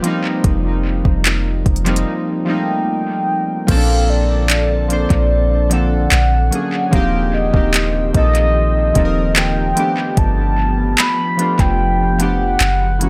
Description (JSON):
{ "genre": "contemporary R&B", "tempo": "74 BPM", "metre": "4/4", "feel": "straight", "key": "unclear", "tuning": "A4 = 438 Hz", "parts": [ { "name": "warm analog keys", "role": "accompaniment", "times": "0.0-13.1 s", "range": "E3 to C5", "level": "-22 LUFS", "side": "equal", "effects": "chorus, tape echo" }, { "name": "smooth R&B drum kit", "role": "drums", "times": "0.0-13.1 s", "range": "crash cymbal, handclaps, hi-hat, kick drum", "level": "-20 LUFS", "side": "equal", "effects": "overdrive, tape echo" }, { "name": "soft 808-style bass", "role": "bass", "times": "0.4-13.1 s", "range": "Eb1 to Bb1", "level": "-20 LUFS", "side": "equal", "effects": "none" }, { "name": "mellow horn-like synth lead", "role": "melody", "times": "2.5-13.1 s", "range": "D5 to B5", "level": "-22 LUFS", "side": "equal", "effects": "chorus, tape echo" }, { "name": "glassy FM pad", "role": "sustained chords", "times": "4.3-13.1 s", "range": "D3 to A4", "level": "-28 LUFS", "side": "equal", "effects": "ensemble chorus, built-in reverb" } ], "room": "little or no reverb", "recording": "echo-heavy mix", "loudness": "-16 LUFS", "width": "mono", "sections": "0.0-3.7 A section; 3.7-13.1 B section", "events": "break 2.1-3.7", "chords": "0.0 F9sus4; 3.7 Bbmaj9; 6.1 Bb7alt; 6.9 Eb6; 9.8 G7" }